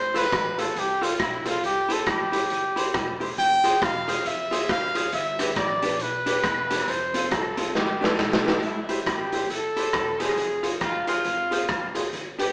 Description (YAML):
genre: ska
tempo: 137 BPM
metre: 4/4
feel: swing 60% on 8ths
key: C major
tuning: A4 = 439 Hz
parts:
  - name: warm trumpet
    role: melody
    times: 0.0-8.6 s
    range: E4 to G5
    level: -28 LUFS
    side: equal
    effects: slapback echo
  - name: upright bass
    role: bass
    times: 0.0-12.5 s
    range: E1 to C2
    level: -44 LUFS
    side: equal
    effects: none
  - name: archtop guitar, miked and amplified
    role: accompaniment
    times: 0.1-12.5 s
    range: C4 to C5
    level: -33 LUFS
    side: equal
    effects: slapback echo
  - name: raw garage drum kit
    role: drums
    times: 0.2-12.5 s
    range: hi-hat, kick drum, rim click, snare drum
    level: -29 LUFS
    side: equal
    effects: slapback echo
  - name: clear horn section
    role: melody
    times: 8.7-12.5 s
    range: E4 to A4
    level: -29 LUFS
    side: equal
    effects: none
room: wet large studio reverb, RT60 0.9 s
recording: band playing live in one room, small speaker sound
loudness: -25 LUFS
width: mono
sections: 0.0-8.6 A section; 8.6-12.5 B section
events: trumpet solo 0.0-8.6; drum fill 7.8-8.6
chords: 0.0 F; 1.6 C; 3.4 Fm; 5.1 G; 6.9 F; 7.8 G; 8.6 C; 10.4 Fm